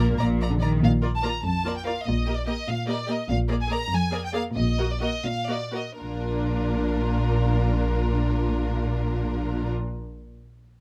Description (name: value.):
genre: quick classical-period movement for string orchestra.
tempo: 77-99 BPM (dotted quarters).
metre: 6/8.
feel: rubato.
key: Bb major.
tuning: A4 = 443 Hz.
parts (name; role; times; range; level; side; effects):
rich chamber violin section; melody; 0.0-9.7 s; Bb4 to Bb5; -34 LUFS; equal; none.
rich chamber violin section; second line; 0.0-9.7 s; F4 to Bb5; -36 LUFS; equal; none.
rich symphonic viola section; accompaniment; 0.0-9.7 s; Bb3 to Ab4; -33 LUFS; equal; none.
rich chamber cello section; bass; 0.0-9.7 s; F2 to Eb3; -30 LUFS; equal; none.
rich chamber double bass section; bass; 0.0-9.7 s; Bb1; -29 LUFS; equal; none.
room: little or no reverb.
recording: close, detailed microphones.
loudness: -25 LUFS.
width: mono.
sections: 0.8-6.0 A section; 6.0-9.0 B section.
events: slowing down 2.7-6.0.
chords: 0.0 Bb; 2.1 Eb/Bb; 3.3 Bb7; 4.6 Ebm/Bb; 6.0 Bb.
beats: 0.18 | 0.82 1.45 | 2.06 2.67 | 3.28 3.90 | 4.56 5.24 | 5.99 6.74 | 7.47 8.21.